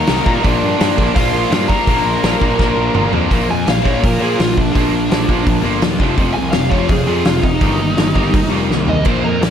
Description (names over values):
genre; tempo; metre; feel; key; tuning
punk rock; 167 BPM; 4/4; straight; Bb major; A4 = 439 Hz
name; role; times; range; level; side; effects
biting lead guitar; melody; 0.0-9.5 s; D4 to Bb5; -20 LUFS; equal; overdrive, slapback echo, ping-pong delay
distorted electric guitar; riff; 0.0-9.5 s; F2 to Eb4; -22 LUFS; right 10 dB; overdrive, slapback echo
heavy high-gain guitar; riff; 0.0-9.5 s; F2 to Eb4; -26 LUFS; right 1 dB; distortion, slapback echo
overdriven electric guitar; riff; 0.0-9.5 s; F2 to Eb4; -20 LUFS; left 9 dB; slapback echo
fuzz picked electric bass; bass; 0.0-9.5 s; F1 to Bb2; -20 LUFS; equal; overdrive
loose indie drum kit; drums; 0.1-9.5 s; crash cymbal, hi-hat, kick drum, snare drum, toms; -18 LUFS; equal; none
room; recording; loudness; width
light reverb, small room ambience; none; -12 LUFS; side -8 dB against mid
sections
0.0-3.3 A section; 3.3-9.5 B section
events
drum fill 2.6-3.3, 8.7-9.1; lead electric guitar solo 3.3-9.5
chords
0.4 Bb; 6.0 F5; 7.6 Eb/G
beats
0.08 | 0.44 0.80 1.16 1.52 | 1.88 2.23 2.59 2.95 | 3.31 3.67 4.03 4.39 | 4.75 5.11 5.46 5.82 | 6.18 6.54 6.90 7.26 | 7.62 7.98 8.34 8.70 | 9.05 9.41